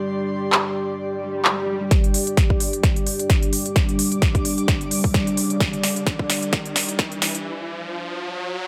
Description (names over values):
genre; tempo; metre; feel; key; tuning
bass house; 130 BPM; 4/4; swing 56% on 16ths; unclear; A4 = 439 Hz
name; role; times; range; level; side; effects
deep dark ambient pad; sustained chords; 0.0-8.7 s; G3 to D5; -30 LUFS; equal; chorus, built-in reverb, sidechain pumping
airy breathy pad; texture; 0.0-7.5 s; G3 to D6; -30 LUFS; equal; chorus, sidechain pumping
big-room dance drum kit; drums; 0.5-7.4 s; handclaps, hi-hat, snare drum; -25 LUFS; equal; overdrive, high-pass filter on snare, high-pass filter on hats
swell and riser; sound effects; 1.2-8.7 s; none; -35 LUFS; equal; none
electronic kick drum; drums; 1.9-7.1 s; none; -22 LUFS; equal; overdrive
room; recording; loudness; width
light reverb; high-pass filter; -21 LUFS; mono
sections
0.0-1.9 A section; 1.9-8.7 B section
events
swell 1.2-1.9; build-up 1.9-8.7; drum fill 1.9-7.5; filter sweep 1.9-8.7; riser 4.0-8.7; break 7.5-8.7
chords
0.0 G5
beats
| 0.07 0.53 0.99 1.45 | 1.91 2.37 2.83 3.30 | 3.76 4.22 4.68 5.14 | 5.60 6.07 6.53 6.99 | 7.45 7.91 8.37